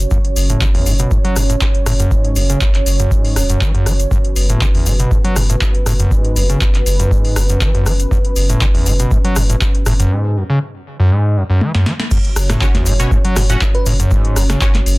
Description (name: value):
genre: acid house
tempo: 120 BPM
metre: 4/4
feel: swing 53% on 16ths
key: F# minor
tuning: A4 = 440 Hz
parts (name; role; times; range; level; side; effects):
- dark analog pad; sustained chords; 0.0-15.0 s; C#4 to C#5; -24 LUFS; right 2 dB; chorus, sidechain pumping
- saturated sub bass; bass; 0.0-15.0 s; E1 to F#1; -16 LUFS; equal; sidechain pumping
- booming analog drum machine; drums; 0.0-15.0 s; crash cymbal, handclaps, hi-hat, rim click, snare drum, toms; -21 LUFS; left 1 dB; none
- egg shaker; percussion; 0.0-15.0 s; none; -28 LUFS; left 4 dB; none
- overdriven acid bass; riff; 0.1-14.6 s; E2 to F#3; -17 LUFS; equal; distortion, tube saturation
- electronic kick drum; drums; 0.1-14.7 s; none; -16 LUFS; equal; none
- band-passed chord stab; stabs; 12.6-14.7 s; C#4 to F#5; -26 LUFS; equal; chorus, tape echo
- bell-like FM electric piano; melody; 13.4-13.9 s; F#4 to B4; -26 LUFS; right 2 dB; chorus, tremolo, tape echo
room: light reverb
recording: dense, heavily limited modern master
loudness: -12 LUFS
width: side -22 dB against mid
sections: 0.0-12.1 A section; 12.1-15.0 B section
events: drum fill 11.6-12.1; band accent 12.0; drop 12.1-15.0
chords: 0.0 F#5